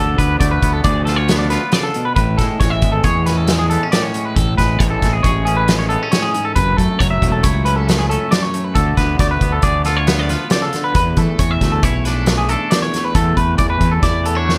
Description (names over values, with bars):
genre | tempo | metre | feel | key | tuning
math rock and midwest emo | 136 BPM | 5/4 | straight | A major | A4 = 440 Hz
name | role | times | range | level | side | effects
twangy electric guitar | accompaniment | 0.0-14.6 s | E2 to G#4 | -25 LUFS | equal | none
twangy electric guitar | arpeggios | 0.0-14.6 s | G#4 to E5 | -22 LUFS | equal | analog chorus
fuzz fingered electric bass | bass | 0.0-14.6 s | E1 to E3 | -21 LUFS | equal | overdrive
loose indie drum kit | drums | 0.2-14.6 s | hi-hat, kick drum, snare drum | -21 LUFS | equal | none
room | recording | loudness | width
light reverb | none | -16 LUFS | mono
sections
0.0-14.6 A section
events
none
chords
0.0 Dm6; 2.2 Amaj7; 6.6 F#m7; 8.8 Dm6; 11.0 E7sus4